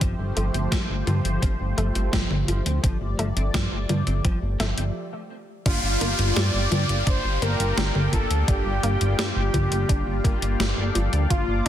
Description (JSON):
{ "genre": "synthwave", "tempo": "85 BPM", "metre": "4/4", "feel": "straight", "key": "G minor", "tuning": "A4 = 438 Hz", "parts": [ { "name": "warm analog pad", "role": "sustained chords", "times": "0.0-11.7 s", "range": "F3 to D6", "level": "-33 LUFS", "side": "left 1 dB", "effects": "chorus, sidechain pumping" }, { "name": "analog pluck", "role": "arpeggios", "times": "0.0-11.7 s", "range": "F3 to F4", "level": "-34 LUFS", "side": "right 1 dB", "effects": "chorus, tape echo" }, { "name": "clean electric guitar", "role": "riff", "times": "0.0-4.8 s", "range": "F3 to C4", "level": "-35 LUFS", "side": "left 2 dB", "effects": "ensemble chorus, tape echo" }, { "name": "chorused synth bass", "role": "bass", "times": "0.0-11.7 s", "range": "G1 to G2", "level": "-24 LUFS", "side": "equal", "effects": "sidechain pumping" }, { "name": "electronic kick drum", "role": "drums", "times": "0.0-11.4 s", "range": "none", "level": "-24 LUFS", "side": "equal", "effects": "overdrive" }, { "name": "gated 80s digital drum machine", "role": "drums", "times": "0.0-11.7 s", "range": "crash cymbal, hi-hat, snare drum, toms", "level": "-27 LUFS", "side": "equal", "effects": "gated reverb, gated reverb snare, overdrive" }, { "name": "soft supersaw", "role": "melody", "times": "5.7-11.7 s", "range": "F4 to D5", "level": "-28 LUFS", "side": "equal", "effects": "tape echo" }, { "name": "mellow synth brass", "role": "stabs", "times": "5.7-11.7 s", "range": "F3 to A4", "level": "-32 LUFS", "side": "left 4 dB", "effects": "chorus, phaser, tape echo" }, { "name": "downlifter", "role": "sound effects", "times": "5.7-11.3 s", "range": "none", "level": "-31 LUFS", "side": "equal", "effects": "none" } ], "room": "light reverb", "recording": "dense, heavily limited modern master", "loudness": "-21 LUFS", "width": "side -11 dB against mid", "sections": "0.0-5.7 A section; 5.7-11.7 B section", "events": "stop 5.0-5.7", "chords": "0.0 Fadd9/G; 5.7 Gm7" }